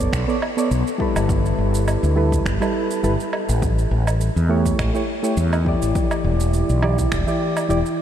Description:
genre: sunset chillout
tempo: 103 BPM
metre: 4/4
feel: swing 54% on 16ths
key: unclear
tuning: A4 = 442 Hz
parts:
  - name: soft electric-piano-like synth keys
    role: accompaniment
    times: 0.0-7.8 s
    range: E3 to D5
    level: -22 LUFS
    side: moving between left 4 dB and right 4 dB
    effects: chorus, auto-pan, diffuse ambient delay
  - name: mellow fretless electric bass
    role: bass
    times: 0.0-7.8 s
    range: E1 to E2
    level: -20 LUFS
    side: equal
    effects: none
  - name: electronic shaker, finger snaps and woodblock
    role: drums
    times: 0.0-8.0 s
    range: none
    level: -29 LUFS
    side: right 2 dB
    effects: overdrive, studio reverb
  - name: electronic kick drum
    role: drums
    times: 0.1-7.2 s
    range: none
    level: -25 LUFS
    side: equal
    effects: overdrive, studio reverb
room: moderate huge ambient reverb, RT60 8.1 s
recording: dreamy mix soaked in reverb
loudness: -18 LUFS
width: side -10 dB against mid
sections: 0.0-8.0 A section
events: none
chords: 0.0 Bm9; 1.3 G69; 3.3 A7; 6.0 Em7

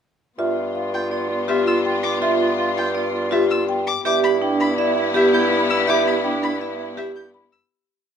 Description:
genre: classical, minimalist pattern music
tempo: 164 BPM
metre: 5/4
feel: straight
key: G mixolydian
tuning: A4 = 439 Hz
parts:
  - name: marimba with medium mallets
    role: melody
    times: 0.4-7.6 s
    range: G4 to B5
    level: -24 LUFS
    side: left 4 dB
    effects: none
  - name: warm clarinet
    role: second line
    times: 0.4-7.5 s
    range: E4 to F4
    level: -27 LUFS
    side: right 4 dB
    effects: none
  - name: rich symphonic string section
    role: sustained chords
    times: 0.4-7.5 s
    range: B3 to F4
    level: -26 LUFS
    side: left 6 dB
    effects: none
  - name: vibraphone with hard mallets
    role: arpeggios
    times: 0.4-7.2 s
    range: D4 to E5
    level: -23 LUFS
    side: right 5 dB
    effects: none
  - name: clear bassoon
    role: bass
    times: 0.4-7.6 s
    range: G2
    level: -25 LUFS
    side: right 1 dB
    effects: none
  - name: dark violin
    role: arpeggios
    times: 0.9-7.7 s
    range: E5 to G6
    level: -26 LUFS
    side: left 4 dB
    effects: none
room: light reverb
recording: close, detailed microphones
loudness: -17 LUFS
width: side -8 dB against mid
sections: 0.4-7.7 A section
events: fade-out 5.9-7.7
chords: 0.4 G7; 4.0 Em/G

